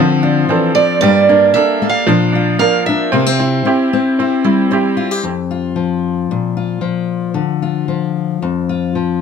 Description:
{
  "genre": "acoustic folk duo or small band",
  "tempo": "114 BPM",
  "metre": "4/4",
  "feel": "straight",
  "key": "unclear",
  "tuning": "A4 = 443 Hz",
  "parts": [
    { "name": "fingerpicked steel-string acoustic guitar", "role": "accompaniment", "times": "0.0-9.2 s", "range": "F2 to G4", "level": "-15 LUFS", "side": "left 5 dB", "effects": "none" },
    { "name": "bright upright piano", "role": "arpeggios", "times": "0.0-5.3 s", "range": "F3 to Bb4", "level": "-16 LUFS", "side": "right 5 dB", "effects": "none" },
    { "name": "picked steel-string acoustic guitar", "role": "melody", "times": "0.7-4.7 s", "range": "D5 to F5", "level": "-15 LUFS", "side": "right 5 dB", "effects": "none" }
  ],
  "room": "light reverb",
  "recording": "close, detailed microphones",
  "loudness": "-12 LUFS",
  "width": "side -6 dB against mid",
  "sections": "0.0-5.2 A section; 5.2-9.2 B section",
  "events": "none",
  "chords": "0.0 Dm7; 1.0 Gmadd9; 2.1 Bb; 3.1 C; 5.2 N.C.; 6.3 Bb5; 7.4 Dm; 8.4 N.C."
}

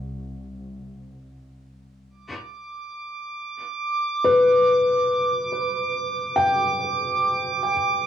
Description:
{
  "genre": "ambient",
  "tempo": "free time",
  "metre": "none",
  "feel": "none",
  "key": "unclear",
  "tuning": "A4 = 443 Hz",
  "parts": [
    { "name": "dark studio double bass section", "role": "bass", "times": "0.0-2.1 s", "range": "C2", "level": "-38 LUFS", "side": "left 1 dB", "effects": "tube saturation" },
    { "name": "drifting glass-harmonics texture", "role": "texture", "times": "2.7-8.1 s", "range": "D6", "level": "-24 LUFS", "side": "right 3 dB", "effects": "chorus, built-in reverb, cassette tape, plate reverb" },
    { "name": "felt-muted upright piano", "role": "arpeggios", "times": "4.2-8.1 s", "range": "B4 to G5", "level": "-21 LUFS", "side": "left 2 dB", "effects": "cassette tape, analog delay, plate reverb" }
  ],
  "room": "wet booth ambience, RT60 0.2 s",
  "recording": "home recording on cassette, small room ambience",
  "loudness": "-19 LUFS",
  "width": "side -9 dB against mid",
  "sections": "0.0-2.1 A section; 2.1-8.1 B section",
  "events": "none",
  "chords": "0.0 N.C.; 2.1 G"
}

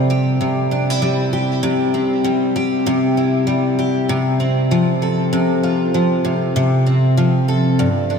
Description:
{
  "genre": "pop",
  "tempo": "97 BPM",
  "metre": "4/4",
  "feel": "swing 60% on 16ths",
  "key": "unclear",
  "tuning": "A4 = 441 Hz",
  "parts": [
    { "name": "picked steel-string acoustic guitar", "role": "solo", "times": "0.0-8.2 s", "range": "G2 to A4", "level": "-15 LUFS", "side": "equal", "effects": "analog chorus, tape echo" }
  ],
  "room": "wet cathedral reverb, RT60 6.1 s",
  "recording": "dreamy mix soaked in reverb",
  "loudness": "-15 LUFS",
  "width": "side -6 dB against mid",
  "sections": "0.0-8.2 A section",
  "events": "none",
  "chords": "0.0 C; 4.1 F/C"
}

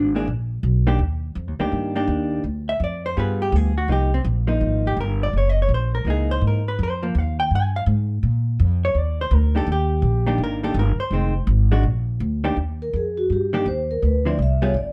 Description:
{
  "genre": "jazz, small-group swing and bop",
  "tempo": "166 BPM",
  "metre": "4/4",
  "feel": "swing 63% on 8ths",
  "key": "Eb major",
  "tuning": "A4 = 440 Hz",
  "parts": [
    { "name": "vintage hollow-body jazz guitar", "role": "accompaniment", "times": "0.0-14.7 s", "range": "D3 to Ab5", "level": "-26 LUFS", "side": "equal", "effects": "none" },
    { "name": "upright bass", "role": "bass", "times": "0.0-14.9 s", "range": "F1 to Bb2", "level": "-23 LUFS", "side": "equal", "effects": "none" },
    { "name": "vibraphone with soft mallets", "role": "melody", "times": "12.8-14.9 s", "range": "Gb4 to E5", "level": "-26 LUFS", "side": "equal", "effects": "none" }
  ],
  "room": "little or no reverb",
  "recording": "dark, warm production",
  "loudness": "-21 LUFS",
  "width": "mono",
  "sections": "1.0-12.6 A section; 12.6-14.9 A section",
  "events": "vibraphone solo 12.6-14.9",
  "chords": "0.0 E7#11 (rootless); 1.0 Ebmaj7; 2.4 Dm; 3.2 G7b9; 3.9 Cm7; 5.3 Gb13; 6.8 Fm9; 8.2 Bb; 9.7 Ebmaj7; 11.1 Fm7; 11.8 Bbadd11; 12.6 Eb; 14.0 Dm9"
}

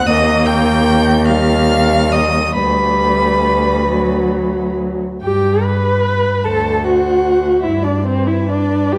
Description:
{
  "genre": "classical, slow romantic movement for string quartet",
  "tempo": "44-52 BPM (dotted quarters)",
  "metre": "6/8",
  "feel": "rubato",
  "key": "G major",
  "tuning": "A4 = 441 Hz",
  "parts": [
    { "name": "dark violin", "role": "melody", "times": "0.0-9.0 s", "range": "C5 to G6", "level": "-23 LUFS", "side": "equal", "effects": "none" },
    { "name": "warm violin", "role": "second line", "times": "0.0-9.0 s", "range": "B4 to G5", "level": "-23 LUFS", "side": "equal", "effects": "none" },
    { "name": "warm viola", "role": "accompaniment", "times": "0.0-9.0 s", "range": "F#3 to B4", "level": "-19 LUFS", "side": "equal", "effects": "none" },
    { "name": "rich cello", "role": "bass", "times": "0.0-9.0 s", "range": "D2 to G2", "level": "-19 LUFS", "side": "equal", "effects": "none" }
  ],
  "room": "wet scoring stage reverb, RT60 1.7 s",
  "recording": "dark, warm production",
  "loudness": "-15 LUFS",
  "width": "mono",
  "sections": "0.0-5.2 A section; 5.2-9.0 B section",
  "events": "none",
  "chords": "0.1 Eb; 2.6 G/D; 3.9 D; 5.2 G; 6.5 D7; 7.6 G"
}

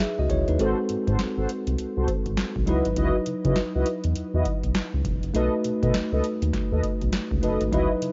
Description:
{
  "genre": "R&B, new jack swing",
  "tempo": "101 BPM",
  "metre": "4/4",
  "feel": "swing 61% on 16ths",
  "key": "C# minor",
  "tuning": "A4 = 440 Hz",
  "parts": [
    { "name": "tine electric piano", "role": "accompaniment", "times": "0.0-8.1 s", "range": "F#3 to E5", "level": "-30 LUFS", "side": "equal", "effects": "cassette tape" },
    { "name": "booming analog drum machine", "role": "drums", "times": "0.0-8.1 s", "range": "hi-hat, kick drum, snare drum", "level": "-30 LUFS", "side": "equal", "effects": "overdrive, cassette tape" },
    { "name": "round analog bass", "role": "bass", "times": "0.2-8.1 s", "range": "E1 to C#3", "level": "-28 LUFS", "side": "equal", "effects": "none" },
    { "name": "mellow synth brass", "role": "stabs", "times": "0.6-7.9 s", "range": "E4 to D#5", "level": "-31 LUFS", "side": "equal", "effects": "chorus, cassette tape" }
  ],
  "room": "little or no reverb",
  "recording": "home recording on cassette, nothing above 7.6 kHz",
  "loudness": "-25 LUFS",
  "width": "mono",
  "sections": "0.0-8.1 A section",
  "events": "none",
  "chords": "0.0 C#m11; 0.6 G#7b9; 2.7 C#m11; 5.3 B7"
}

